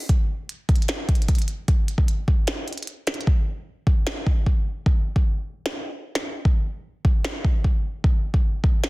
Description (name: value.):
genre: hip hop.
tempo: 151 BPM.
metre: 4/4.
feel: half-time.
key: none.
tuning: none.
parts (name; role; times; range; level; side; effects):
minimal click drum kit; drums; 0.1-8.9 s; hi-hat, kick drum, snare drum; -20 LUFS; equal; overdrive.
room: little or no reverb.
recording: dense, heavily limited modern master.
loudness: -21 LUFS.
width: side -22 dB against mid.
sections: 0.0-8.9 A section.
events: hi-hats muted 3.3-8.9.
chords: none.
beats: | 0.09 0.49 0.89 1.29 | 1.68 2.08 2.48 2.88 | 3.27 3.67 4.07 4.46 | 4.86 5.26 5.66 6.05 | 6.45 6.85 7.25 7.64 | 8.04 8.44 8.84.